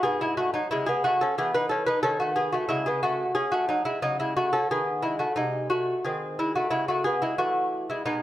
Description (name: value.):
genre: classical, baroque-style dance for lute.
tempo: 89 BPM.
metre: 4/4.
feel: rubato.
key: C# minor.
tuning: A4 = 435 Hz.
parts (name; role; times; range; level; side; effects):
lute; solo; 0.0-8.2 s; G#2 to B4; -24 LUFS; equal; none.
room: moderate recital hall reverb, RT60 1.7 s.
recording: none.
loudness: -24 LUFS.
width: side -13 dB against mid.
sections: 0.0-8.2 A section.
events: none.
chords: 0.0 E/G#; 2.7 C#5; 5.4 G#/B#; 6.7 C#m.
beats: | 0.02 0.70 1.38 2.05 | 2.71 3.38 4.05 4.71 | 5.38 6.04 6.72 7.40 | 8.08.